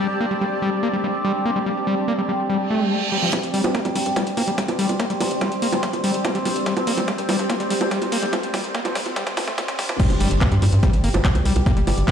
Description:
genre	psychedelic trance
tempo	144 BPM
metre	4/4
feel	straight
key	unclear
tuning	A4 = 440 Hz
part	overtone-sweeping drone	sustained chords	0.0-12.1 s	G3 to C5	-27 LUFS	right 1 dB	chorus, built-in reverb, sidechain pumping
part	overdriven acid bass	riff	0.0-12.1 s	F3 to Bb3	-25 LUFS	left 1 dB	auto-pan, sidechain pumping, ping-pong delay
part	granular cloud pad	texture	0.0-12.1 s	G4 to A5	-29 LUFS	equal	built-in reverb, sidechain pumping
part	reverse cymbal, riser and impact	sound effects	2.7-11.7 s	none	-30 LUFS	right 1 dB	none
part	electronic kick drum	drums	3.3-12.1 s	none	-22 LUFS	equal	high-pass filter on kick, high-pass filter on room
part	techno drum kit	drums	3.3-12.1 s	bongos, crash cymbal, handclaps, hi-hat	-26 LUFS	right 2 dB	none
part	tight sequencer bass	bass	3.4-12.0 s	G1 to G2	-23 LUFS	equal	high-pass filter
room	light reverb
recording	played on a big sound system in a bare room, large studio reverb, high-pass filter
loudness	-19 LUFS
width	side -8 dB against mid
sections	0.0-3.3 A section; 3.3-10.0 B section; 10.0-12.1 C section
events	filter sweep on acid bass 0.0-3.3, 3.3-10.0; reverse cymbal 2.7-3.3; build-up 3.3-10.0; riser 3.3-10.0; drum fill 6.7-10.0; drop 10.0-12.1; impact 10.0-11.7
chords	0.0 G5

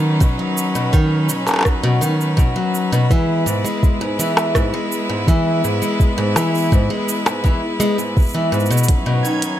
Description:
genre	folktronica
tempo	83 BPM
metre	4/4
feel	straight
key	unclear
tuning	A4 = 440 Hz
part	clear string quartet	sustained chords	0.0-9.6 s	F#3 to B4	-23 LUFS	equal	none
part	picked plugged-in acoustic archtop guitar	arpeggios	0.0-9.6 s	G#2 to G#3	-18 LUFS	equal	tape echo
part	electronic kick drum	drums	0.2-9.0 s	none	-15 LUFS	equal	none
part	minimal click drum kit	drums	0.2-9.6 s	hi-hat, percussion blips, rim click, shaker	-21 LUFS	equal	overdrive
part	backwards swelling texture	texture	9.2-9.6 s	G#6	-29 LUFS	right 5 dB	built-in reverb
room	moderate studio reverb, RT60 0.6 s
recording	none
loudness	-15 LUFS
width	side -12 dB against mid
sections	0.0-9.6 A section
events	none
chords	0.0 Badd9; 3.1 E; 8.9 Badd9

